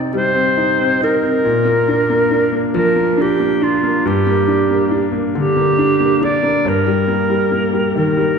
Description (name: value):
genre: six-eight pop ballad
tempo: 46 BPM (dotted quarters)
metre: 6/8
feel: straight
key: G minor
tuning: A4 = 440 Hz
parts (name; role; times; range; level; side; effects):
- clear concert grand piano; accompaniment; 0.0-8.4 s; G2 to Eb4; -16 LUFS; left 1 dB; none
- warm clarinet; melody; 0.2-8.4 s; F4 to D5; -16 LUFS; right 2 dB; none
room: wet scoring stage reverb, RT60 1.7 s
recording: recorded in a church or concert hall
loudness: -13 LUFS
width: side -6 dB against mid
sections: 0.0-8.4 A section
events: none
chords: 0.0 Cm; 1.4 Bb; 4.0 Gm; 6.7 Eb/G